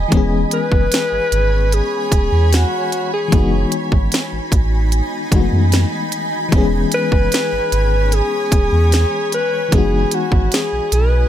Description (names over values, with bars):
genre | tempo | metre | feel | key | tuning
contemporary R&B | 75 BPM | 4/4 | straight | E major | A4 = 436 Hz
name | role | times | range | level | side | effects
FM electric piano with tremolo | accompaniment | 0.0-11.3 s | E3 to G#4 | -22 LUFS | left 6 dB | none
granular cloud pad | sustained chords | 0.0-11.3 s | D#4 to B5 | -24 LUFS | right 1 dB | built-in reverb
sub bass with octave | bass | 0.0-11.3 s | E1 to F#2 | -16 LUFS | right 1 dB | none
trap drum kit | drums | 0.1-11.1 s | hi-hat, kick drum, snare drum | -16 LUFS | right 1 dB | none
mellow alto saxophone | melody | 0.5-11.3 s | F#4 to B4 | -19 LUFS | left 2 dB | none
room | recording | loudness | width
little or no reverb | none | -14 LUFS | side -11 dB against mid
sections
0.0-11.3 A section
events
none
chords
0.1 E6; 3.3 F#13sus4; 6.5 E6; 9.7 F#13sus4